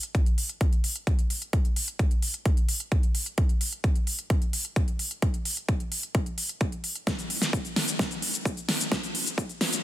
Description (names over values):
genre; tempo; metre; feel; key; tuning
EDM; 130 BPM; 4/4; straight; none; none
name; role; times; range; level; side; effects
pop drum kit; drums; 0.0-9.8 s; hi-hat, shaker, snare drum; -28 LUFS; equal; none
electronic kick drum; drums; 0.1-9.5 s; none; -25 LUFS; equal; overdrive
room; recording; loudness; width
light reverb, digital ambience; dense, heavily limited modern master, high-pass filter; -25 LUFS; side -14 dB against mid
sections
0.0-9.8 A section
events
build-up 0.0-9.8; filter sweep 0.0-9.8; drum fill 7.1-9.8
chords
none